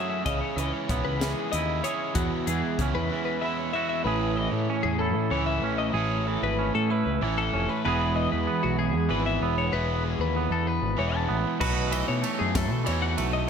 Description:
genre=math rock and midwest emo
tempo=64 BPM (dotted quarters)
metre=6/8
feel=straight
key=E major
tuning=A4 = 440 Hz
part: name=twangy electric guitar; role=accompaniment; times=0.0-13.5 s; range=E2 to G#4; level=-30 LUFS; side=right 9 dB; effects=spring reverb
part: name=twelve-string electric guitar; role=arpeggios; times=0.0-13.5 s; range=F#4 to A5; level=-30 LUFS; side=left 8 dB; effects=spring reverb
part: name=overdriven semi-hollow guitar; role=riff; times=0.0-13.5 s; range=A2 to F#4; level=-31 LUFS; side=left 1 dB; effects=none
part: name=growling picked electric bass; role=bass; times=0.3-13.5 s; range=E1 to B2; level=-29 LUFS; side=equal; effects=overdrive
part: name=crisp fusion drum kit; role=drums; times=0.3-2.9, 11.6-13.3 s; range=crash cymbal, hi-hat, kick drum, ride cymbal, snare drum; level=-32 LUFS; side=equal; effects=none
room=light reverb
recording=none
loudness=-24 LUFS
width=side -7 dB against mid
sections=0.0-4.1 A section; 4.1-13.5 B section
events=none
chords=0.3 C#m7; 2.2 E6; 4.1 Amaj9; 7.8 E; 11.6 B7sus4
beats=| 0.26 1.21 | 2.16 3.11 | 4.06 5.00 | 5.95 6.89 | 7.84 8.78 | 9.73 10.67 | 11.61 12.56

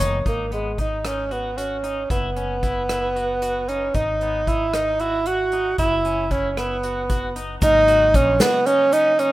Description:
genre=progressive instrumental, band music in an uneven meter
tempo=228 BPM (eighths)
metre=7/8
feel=straight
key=G# minor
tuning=A4 = 440 Hz
part: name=bell-like tine electric piano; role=accompaniment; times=0.0-0.2, 7.6-9.3 s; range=C#3 to C#5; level=-30 LUFS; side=left 1 dB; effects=none
part: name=electric guitar at the edge of break-up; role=arpeggios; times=0.0-9.3 s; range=B3 to A#4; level=-31 LUFS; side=left 2 dB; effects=harmonic tremolo
part: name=mellow fretless electric bass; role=bass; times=0.0-8.4 s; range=F#1 to A#1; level=-28 LUFS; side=equal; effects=none
part: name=unplugged drum kit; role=drums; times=0.0-9.3 s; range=hi-hat, kick drum, rim click, snare drum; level=-25 LUFS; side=equal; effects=none
part: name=breathy tenor saxophone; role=melody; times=0.3-9.3 s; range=G#3 to F#4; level=-19 LUFS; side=right 1 dB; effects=none
part: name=egg shaker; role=percussion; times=7.6-9.2 s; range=none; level=-40 LUFS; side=right 2 dB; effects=none
room=light reverb, studio reverb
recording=rough home demo mix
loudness=-18 LUFS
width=side -16 dB against mid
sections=0.3-7.6 A section; 7.6-9.3 B section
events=none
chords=0.3 G#7(no3); 2.1 F#7sus4; 3.9 G#7(no3); 5.8 F#7sus4; 7.6 D#m7/G#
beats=0.00 | 0.26 0.53 0.79 1.05 1.31 1.58 1.84 | 2.10 2.37 2.63 2.89 3.15 3.42 3.68 | 3.94 4.21 4.47 4.73 5.00 5.26 5.52 | 5.79 6.05 6.31 6.57 6.83 7.10 7.36 | 7.62 7.88 8.14 8.40 8.67 8.93 9.19

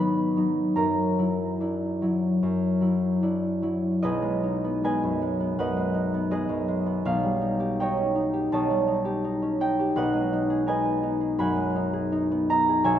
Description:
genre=classical, solo harp piece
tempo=70-85 BPM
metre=4/4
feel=rubato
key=B major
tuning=A4 = 438 Hz
part: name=concert harp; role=solo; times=0.0-13.0 s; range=B1 to D#6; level=-23 LUFS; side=equal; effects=none
room=moderate concert hall reverb, RT60 2.3 s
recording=nothing above 10.7 kHz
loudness=-23 LUFS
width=side -10 dB against mid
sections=0.0-4.0 A section; 4.0-13.0 B section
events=none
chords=0.0 G#m9; 0.8 F#aug7; 4.0 B6; 7.1 D#7#11/B; 10.0 B6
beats=| 0.78 1.59 2.41 3.21 | 4.02 4.84 5.59 6.32 | 7.06 7.80 8.52 9.24 | 9.97 10.68 11.39 12.12 | 12.84

